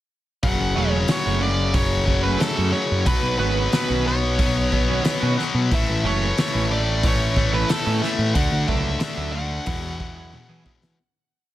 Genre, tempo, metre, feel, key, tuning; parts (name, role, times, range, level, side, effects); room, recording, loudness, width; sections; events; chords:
quiet-loud alternative rock; 91 BPM; 4/4; straight; F# minor; A4 = 442 Hz
nasal lead guitar with a parked wah; melody; 0.4-10.6 s; A4 to F#5; -26 LUFS; right 3 dB; overdrive, digital delay
tight distorted guitar; riff; 0.4-11.0 s; E2 to D4; -24 LUFS; left 5 dB; distortion
growling picked electric bass; bass; 0.4-11.0 s; E1 to E3; -24 LUFS; equal; overdrive
loose indie drum kit; drums; 0.4-11.0 s; hi-hat, kick drum, snare drum, toms; -25 LUFS; equal
twangy electric guitar; arpeggios; 0.6-10.7 s; D3 to G#4; -30 LUFS; right 8 dB; analog chorus
light reverb, small room reverb; -19 LUFS; side -14 dB against mid
0.4-11.0 verse
fade-out 8.4-11.0; drum fill 10.3-11.0
0.4 F#m; 3.1 Badd9; 5.7 A; 8.4 Dadd9; 9.7 Eadd9